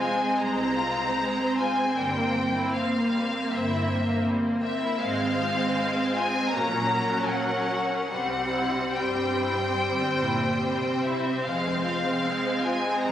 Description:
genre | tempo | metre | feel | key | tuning
classical, slow romantic movement for string orchestra | 70-81 BPM | 4/4 | rubato | F minor | A4 = 438 Hz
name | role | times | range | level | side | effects
clear studio violin section | melody | 0.0-13.1 s | E5 to Bb5 | -28 LUFS | left 2 dB | none
rich studio violin section | second line | 0.0-13.1 s | G3 to C5 | -29 LUFS | equal | none
clear studio viola section | accompaniment | 0.0-13.1 s | Gb3 to Db4 | -28 LUFS | right 1 dB | none
rich studio cello section | bass | 0.4-13.1 s | C2 to C3 | -35 LUFS | right 1 dB | none
rich studio double bass section | bass | 0.4-13.1 s | F1 to C2 | -38 LUFS | right 1 dB | none
room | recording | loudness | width
wet recital hall reverb, RT60 1.3 s | recorded on a phone in the room, club reverb, compression | -23 LUFS | side -10 dB against mid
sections
0.0-13.1 A section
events
none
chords
0.0 Fm; 2.0 C7/G; 5.0 Fm/Ab; 6.5 Gb/Bb; 8.1 C; 11.5 Fm

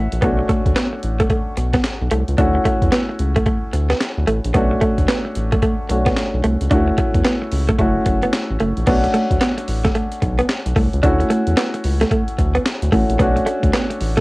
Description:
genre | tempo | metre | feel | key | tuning
R&B, new jack swing | 111 BPM | 4/4 | swing 62% on 16ths | B minor | A4 = 440 Hz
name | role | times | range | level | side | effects
warm baby grand piano | accompaniment | 0.0-14.2 s | A3 to F#5 | -22 LUFS | left 1 dB | cassette tape
direct-recorded clean electric guitar | riff | 0.0-14.2 s | A3 to D4 | -20 LUFS | right 1 dB | lush chorus, cassette tape
round analog bass | bass | 0.0-14.2 s | F#1 to E2 | -19 LUFS | equal | none
breakbeat sampler-style drum kit | drums | 0.1-14.2 s | crash cymbal, handclaps, hi-hat, kick drum, snare drum | -20 LUFS | equal | cassette tape
room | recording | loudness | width
light reverb | home recording on cassette | -15 LUFS | side -22 dB against mid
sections
0.0-8.9 A section; 8.9-14.2 B section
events
grand piano fill 0.0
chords
0.2 Bm7; 2.4 Dmaj7; 4.5 Bm7; 6.7 Dmaj7; 7.8 F#m7; 8.9 Bm7; 11.0 Dmaj7; 13.2 Bm7

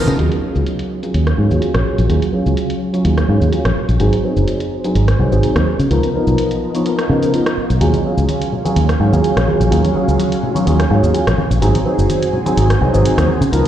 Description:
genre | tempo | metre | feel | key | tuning
filtered disco house | 126 BPM | 4/4 | swing 53% on 16ths | Eb minor | A4 = 439 Hz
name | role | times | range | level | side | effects
warm grand piano | accompaniment | 0.0-13.7 s | F3 to Db5 | -18 LUFS | equal | phaser, low-pass filter
phased string machine | sustained chords | 0.0-13.7 s | Gb3 to Bb5 | -22 LUFS | right 1 dB | ensemble chorus, phaser, low-pass filter
fingered electric bass | bass | 0.1-13.6 s | Gb1 to Db3 | -14 LUFS | equal | low-pass filter
punchy analog drum machine | drums | 0.1-13.7 s | hi-hat, rim click, shaker | -25 LUFS | equal | overdrive, low-pass filter on hats, low-pass filter on snare, low-pass filter on perc, low-pass filter on room
tambourine and congas | percussion | 0.1-0.2, 7.8-13.7 s | none | -23 LUFS | left 1 dB | low-pass filter on perc
room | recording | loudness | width
moderate lush hall reverb, RT60 2.4 s | played on a big sound system in a bare room, large studio reverb | -13 LUFS | side -11 dB against mid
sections
0.2-13.7 A section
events
none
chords
0.2 Ebm11; 4.0 Ab7; 5.7 Db13; 7.8 Ebm11; 11.6 Ab7

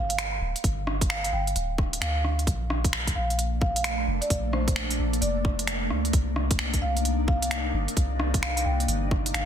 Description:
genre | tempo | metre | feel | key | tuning
future garage | 131 BPM | 4/4 | swing 63% on 16ths | unclear | A4 = 440 Hz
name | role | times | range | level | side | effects
marimba with medium mallets | melody | 0.0-9.5 s | C5 to G5 | -32 LUFS | right 1 dB | ping-pong delay
soft 808-style bass | bass | 0.0-9.5 s | D1 to D2 | -28 LUFS | equal | tube saturation
garage drum kit | drums | 0.1-9.5 s | finger snaps, hi-hat, rim click | -29 LUFS | right 1 dB | soft clipping on snare
electronic kick drum | drums | 0.6-9.2 s | none | -26 LUFS | equal | none
ethereal airy pad | sustained chords | 3.4-9.5 s | C3 to Eb4 | -32 LUFS | left 2 dB | ensemble chorus, built-in reverb, phaser, sidechain pumping
room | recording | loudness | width
light reverb | dense, heavily limited modern master | -24 LUFS | side -9 dB against mid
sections
0.0-9.5 A section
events
none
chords
0.0 G5; 2.5 Bbmaj7; 6.1 Cm9

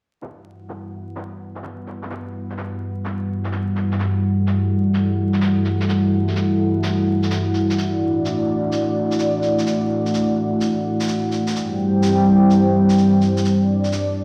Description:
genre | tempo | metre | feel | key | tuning
future garage | 127 BPM | 4/4 | swing 67% on 16ths | E minor | A4 = 439 Hz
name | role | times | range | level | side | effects
dark analog pad | sustained chords | 0.2-14.2 s | G3 to G5 | -20 LUFS | equal | chorus
shaker | drums | 0.2-14.0 s | none | -35 LUFS | equal | low-pass filter on perc, vintage 12-bit sampler grit, studio reverb
room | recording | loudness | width
moderate lush hall reverb, RT60 1.9 s | played on a big sound system in a bare room, stone room reverb, vinyl crackle | -19 LUFS | mono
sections
0.2-14.2 A section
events
filter sweep on drum 0.2-14.2; filter sweep on analog synth pad 0.2-14.2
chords
0.2 Emadd9; 7.8 Dadd9; 11.6 C

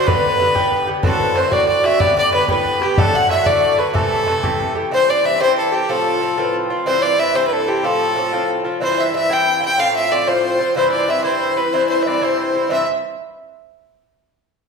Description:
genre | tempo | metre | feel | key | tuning
celtic folk, Celtic jig | 123 BPM (dotted quarters) | 6/8 | straight | A dorian, C major from 4.9 s | A4 = 440 Hz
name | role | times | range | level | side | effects
bright fiddle | melody | 0.0-12.9 s | G4 to G5 | -17 LUFS | equal | none
mandolin | second line | 0.0-4.7 s | G4 to F#5 | -26 LUFS | right 5 dB | none
mellow hollow baroque flute | second line | 0.0-12.9 s | G4 to G5 | -24 LUFS | left 4 dB | none
Irish bouzouki | accompaniment | 0.0-12.8 s | G2 to G4 | -21 LUFS | right 1 dB | none
bodhran | percussion | 0.1-4.6 s | none | -22 LUFS | left 1 dB | none
room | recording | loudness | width
wet recital hall reverb, RT60 1.3 s | recorded in a church or concert hall | -14 LUFS | side -5 dB against mid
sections
0.0-4.9 A section; 4.9-12.7 B section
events
none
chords
0.1 Gadd9; 1.0 D7; 2.0 Gadd9; 3.0 D; 3.9 Am7; 4.9 C; 5.9 F; 6.9 C; 7.8 F; 8.8 C; 9.8 F; 10.8 C

